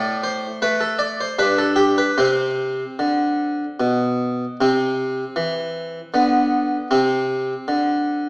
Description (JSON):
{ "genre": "classical, baroque-style suite movement for harpsichord", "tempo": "77 BPM", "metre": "3/4", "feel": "rubato", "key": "C major", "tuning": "A4 = 440 Hz", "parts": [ { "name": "harpsichord", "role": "solo", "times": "0.0-8.3 s", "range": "G2 to D5", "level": "-18 LUFS", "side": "equal", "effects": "none" } ], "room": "wet recital hall reverb, RT60 1.4 s", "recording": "small speaker sound", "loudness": "-18 LUFS", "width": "side -27 dB against mid", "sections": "0.0-4.6 A section; 4.6-8.3 A section", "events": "none", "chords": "0.0 N.C.; 1.4 G5; 2.2 Csus2; 4.6 C; 6.1 Bm/D; 6.9 N.C." }